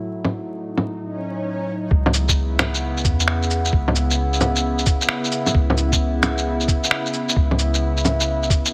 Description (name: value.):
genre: future garage.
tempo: 132 BPM.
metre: 4/4.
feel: swing 66% on 16ths.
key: C# minor.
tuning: A4 = 436 Hz.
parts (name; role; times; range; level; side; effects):
warbly tape-like pad; sustained chords; 0.0-8.7 s; A2 to E4; -27 LUFS; equal; chorus, built-in reverb, sidechain pumping.
electronic bongos, cabasa, shaker and finger snaps; drums; 0.2-8.7 s; none; -23 LUFS; equal; none.
swell; sound effects; 1.2-1.9 s; none; -34 LUFS; equal; none.
soft 808-style bass; bass; 1.9-8.5 s; C#2 to E2; -24 LUFS; equal; sidechain pumping.
electronic kick drum; drums; 1.9-8.6 s; none; -22 LUFS; equal; none.
room: light reverb.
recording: vinyl crackle.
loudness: -20 LUFS.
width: mono.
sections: 0.0-1.9 A section; 1.9-8.7 B section.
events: swell 1.2-1.9.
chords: 0.0 F#m/A; 1.9 C#m7.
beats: | 0.09 0.55 1.00 1.45 | 1.91 2.36 2.82 3.27 | 3.73 4.18 4.64 5.09 | 5.54 6.00 6.45 6.91 | 7.36 7.82 8.27 8.73.